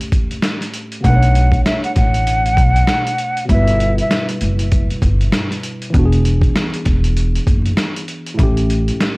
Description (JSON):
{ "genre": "hip hop, boom-bap hip-hop", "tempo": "98 BPM", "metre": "4/4", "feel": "swing 60% on 16ths", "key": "B minor", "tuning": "A4 = 440 Hz", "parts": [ { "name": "tine electric piano", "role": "accompaniment", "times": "0.0-9.2 s", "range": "A2 to C#5", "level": "-23 LUFS", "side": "equal", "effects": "medium stereo tremolo, cassette tape, high-pass filter, low-pass filter" }, { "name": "trip hop sampler-style drum kit", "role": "drums", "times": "0.0-9.2 s", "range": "hi-hat, kick drum, snare drum", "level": "-18 LUFS", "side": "equal", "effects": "none" }, { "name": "breathy jazz flute", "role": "melody", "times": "1.0-4.3 s", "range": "E5 to F#5", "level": "-19 LUFS", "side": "equal", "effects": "high-pass filter, low-pass filter" }, { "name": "upright bass", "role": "bass", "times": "1.0-8.9 s", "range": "E1 to B1", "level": "-15 LUFS", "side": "equal", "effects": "none" } ], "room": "little or no reverb", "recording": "dry, gritty hardware recording, vinyl crackle", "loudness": "-13 LUFS", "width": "side -26 dB against mid", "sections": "0.0-9.2 A section", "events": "break 0.0-1.0", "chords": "0.0 A7; 1.0 Bm9; 3.5 G6; 5.9 E7; 8.4 A7" }